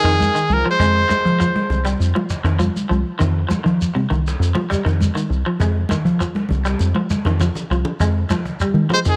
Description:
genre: afrobeat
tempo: 100 BPM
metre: 4/4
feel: straight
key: F minor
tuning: A4 = 440 Hz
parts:
  - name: brilliant trumpet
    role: melody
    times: 0.0-1.8, 8.9-9.2 s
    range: Ab4 to C5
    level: -20 LUFS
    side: equal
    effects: none
  - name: trombone with bucket mute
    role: second line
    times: 0.0-1.8, 8.9-9.2 s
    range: Eb3 to Ab3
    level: -30 LUFS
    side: equal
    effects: none
  - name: deep dub fingered electric bass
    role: bass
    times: 0.0-9.2 s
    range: C2 to F3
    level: -20 LUFS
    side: equal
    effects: none
  - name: electric guitar at the edge of break-up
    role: arpeggios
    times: 0.1-9.1 s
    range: C3 to Ab3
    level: -25 LUFS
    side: equal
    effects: lush chorus
  - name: cajon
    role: drums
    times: 0.1-9.2 s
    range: none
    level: -34 LUFS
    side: equal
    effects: none
  - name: shekere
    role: percussion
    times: 0.1-9.2 s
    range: none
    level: -29 LUFS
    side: equal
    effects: none
  - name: congas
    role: percussion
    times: 0.2-9.0 s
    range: none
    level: -26 LUFS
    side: equal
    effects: none
room: light reverb, small room ambience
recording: none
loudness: -19 LUFS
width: mono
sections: 0.0-8.0 A section; 8.0-9.2 B section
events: drum fill 6.8-8.0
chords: 0.0 Fm7; 8.0 Fmadd9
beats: 0.20 | 0.80 1.40 2.00 2.60 | 3.20 3.80 4.40 5.00 | 5.60 6.20 6.80 7.40 | 8.00 8.60

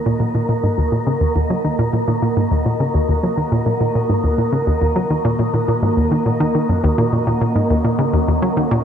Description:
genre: ambient, sequencer-driven space music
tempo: 104 BPM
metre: 4/4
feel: straight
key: Eb minor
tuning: A4 = 439 Hz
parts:
  - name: phased analog pad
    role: sustained chords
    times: 0.0-8.8 s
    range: Eb3 to Eb5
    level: -27 LUFS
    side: equal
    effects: phaser, chorus
  - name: wind-like tuned noise texture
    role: texture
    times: 0.0-8.8 s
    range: Bb3 to Bb4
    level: -20 LUFS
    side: right 1 dB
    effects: built-in reverb
  - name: hollow square pluck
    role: riff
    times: 0.1-8.8 s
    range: Eb2 to Gb3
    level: -17 LUFS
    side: equal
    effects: chorus, cassette tape, ping-pong delay
room: moderate huge ambient reverb, RT60 8.8 s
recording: none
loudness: -15 LUFS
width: side -8 dB against mid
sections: 0.0-8.8 A section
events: fade-in on analog synth pad 0.0-8.8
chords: 0.0 Ebm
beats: | 0.06 0.64 1.21 1.79 | 2.37 2.94 3.52 4.10 | 4.67 5.25 5.83 6.41 | 6.98 7.56 8.14 8.71

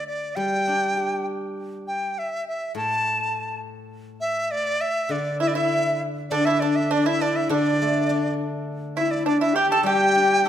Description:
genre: chinese traditional, Chinese chamber ensemble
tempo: 101 BPM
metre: 2/4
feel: rubato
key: unclear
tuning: A4 = 440 Hz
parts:
  - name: bright dizi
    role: melody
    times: 0.0-10.5 s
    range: D5 to A5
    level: -23 LUFS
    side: equal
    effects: none
  - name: steel-string zither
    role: accompaniment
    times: 0.4-10.5 s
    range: A2 to G4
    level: -29 LUFS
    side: left 1 dB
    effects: none
  - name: pipa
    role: second line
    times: 5.4-10.5 s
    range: D4 to A4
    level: -26 LUFS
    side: right 6 dB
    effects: none
  - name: rich horsehead fiddle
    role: second line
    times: 5.4-10.5 s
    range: D4 to G4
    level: -24 LUFS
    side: left 3 dB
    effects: none
room: moderate scoring stage reverb, RT60 1.9 s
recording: none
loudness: -21 LUFS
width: side -10 dB against mid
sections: 0.0-6.3 A section; 6.3-10.5 B section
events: none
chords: none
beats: | 0.35 0.95 | 1.56 2.16 | 2.76 3.34 | 3.92 4.50 | 5.10 5.71 | 6.32 6.92 | 7.51 8.09 | 8.67 9.26 | 9.85 10.45

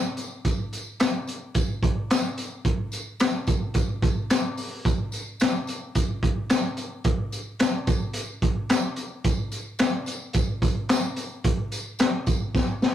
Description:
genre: funk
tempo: 109 BPM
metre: 4/4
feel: swing 56% on 16ths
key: none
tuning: none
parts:
  - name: crunchy breakbeat drum kit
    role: drums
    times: 0.2-12.9 s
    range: handclaps, hi-hat, kick drum, snare drum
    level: -23 LUFS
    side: equal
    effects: none
  - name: tambourine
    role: percussion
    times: 0.2-12.9 s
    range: none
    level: -37 LUFS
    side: equal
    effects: none
room: light reverb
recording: rough rehearsal-room recording, tube saturation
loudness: -23 LUFS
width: side -11 dB against mid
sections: 0.0-12.9 A section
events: drum fill 12.6-12.9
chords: none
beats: | 0.45 1.00 1.55 2.10 | 2.65 3.20 3.75 4.30 | 4.85 5.40 5.95 6.50 | 7.05 7.60 8.15 8.70 | 9.25 9.80 10.35 10.90 | 11.45 12.00 12.55

